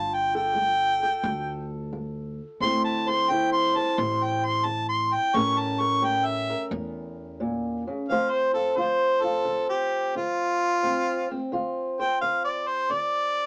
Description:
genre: acoustic country blues, solo or duo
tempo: 88 BPM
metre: 4/4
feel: swing 68% on 8ths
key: D minor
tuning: A4 = 440 Hz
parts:
  - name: warm harmonica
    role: melody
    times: 0.0-13.5 s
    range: F4 to C#6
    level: -26 LUFS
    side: equal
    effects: none
  - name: fingerpicked old ladder-braced acoustic guitar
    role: accompaniment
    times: 0.0-13.5 s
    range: A2 to C5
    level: -31 LUFS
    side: equal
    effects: none
  - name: upright bass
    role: bass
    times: 0.0-7.9 s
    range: G1 to E2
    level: -38 LUFS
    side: equal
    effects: none
room: wet booth ambience, RT60 0.2 s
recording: heard from further back in the room, small speaker sound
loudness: -25 LUFS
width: mono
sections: 0.0-8.1 A section; 8.1-13.5 B section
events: harmonica solo 0.0-8.1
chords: 0.0 Gsus2; 2.6 Dsus2; 5.3 A7b9; 8.1 Dm7

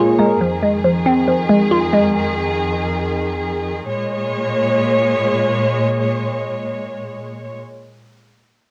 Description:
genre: hip hop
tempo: free time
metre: none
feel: none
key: Bb minor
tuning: A4 = 436 Hz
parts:
  - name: glassy wavetable pluck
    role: accompaniment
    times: 0.0-3.0 s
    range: Bb2 to F4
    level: -17 LUFS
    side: equal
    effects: chorus, low-pass filter, cassette tape
  - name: rich studio string section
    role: sustained chords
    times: 0.0-7.6 s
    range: F2 to Db5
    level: -21 LUFS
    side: equal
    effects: cassette tape
room: light reverb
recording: home recording on cassette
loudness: -18 LUFS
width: mono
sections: 0.0-3.9 A section; 3.9-7.4 B section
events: none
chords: 0.4 Fm7; 3.9 Bbm7

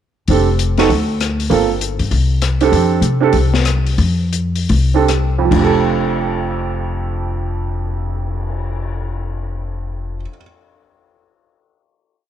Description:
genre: jazz, small-group swing and bop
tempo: 138-197 BPM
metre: 4/4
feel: swing 63% on 8ths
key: F major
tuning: A4 = 439 Hz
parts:
  - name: warm upright piano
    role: accompaniment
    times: 0.3-10.4 s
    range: F2 to A4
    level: -18 LUFS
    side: right 8 dB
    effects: none
  - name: upright bass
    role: bass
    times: 0.3-10.2 s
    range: F1 to C3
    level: -17 LUFS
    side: left 2 dB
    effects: none
  - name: open jazz drum kit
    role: drums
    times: 0.3-8.9 s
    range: crash cymbal, cymbal swell, hi-hat, kick drum, rim click, snare drum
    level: -24 LUFS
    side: left 7 dB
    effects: none
room: light reverb, studio reverb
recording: 1960s-style stereo with parts hard left and right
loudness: -14 LUFS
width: side -10 dB against mid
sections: 0.3-5.5 A section; 5.5-9.0 final chord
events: slowing down 2.7-5.5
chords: 0.3 F69; 0.9 N.C.; 1.5 Gm11; 2.1 Csus2; 2.7 F69

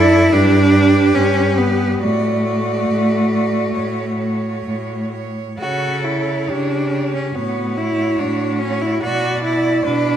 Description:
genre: classical, lyrical piece for cello ensemble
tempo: 63-74 BPM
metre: 4/4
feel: rubato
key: D major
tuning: A4 = 440 Hz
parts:
  - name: rich cello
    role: melody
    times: 0.0-10.2 s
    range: F#4 to D5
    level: -24 LUFS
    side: left 6 dB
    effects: none
  - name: rich cello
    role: second line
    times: 0.0-10.2 s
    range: B4 to D5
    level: -25 LUFS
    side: right 8 dB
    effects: none
  - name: clear cello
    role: accompaniment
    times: 0.0-10.2 s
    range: A3 to F#4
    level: -17 LUFS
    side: equal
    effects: none
  - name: clear cello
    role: bass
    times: 0.0-10.2 s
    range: F#2 to C#3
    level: -22 LUFS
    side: right 1 dB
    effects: none
room: wet scoring stage reverb, RT60 1.9 s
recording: none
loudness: -15 LUFS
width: side -10 dB against mid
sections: 0.0-10.2 A section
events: none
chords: 0.3 G; 2.0 D/A; 5.6 Dmaj9/C#; 7.4 F#m/A; 9.0 Bm

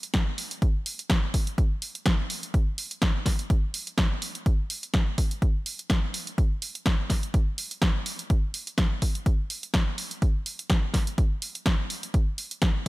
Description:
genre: house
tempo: 125 BPM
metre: 4/4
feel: swing 55% on 16ths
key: none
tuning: none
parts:
  - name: punchy analog drum machine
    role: drums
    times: 0.0-12.7 s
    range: hi-hat, snare drum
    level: -29 LUFS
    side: equal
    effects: overdrive
  - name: electronic kick drum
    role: drums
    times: 0.1-12.7 s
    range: none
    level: -24 LUFS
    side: equal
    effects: overdrive
room: digital ambience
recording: none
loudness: -24 LUFS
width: side -20 dB against mid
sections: 0.0-12.9 A section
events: none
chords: none

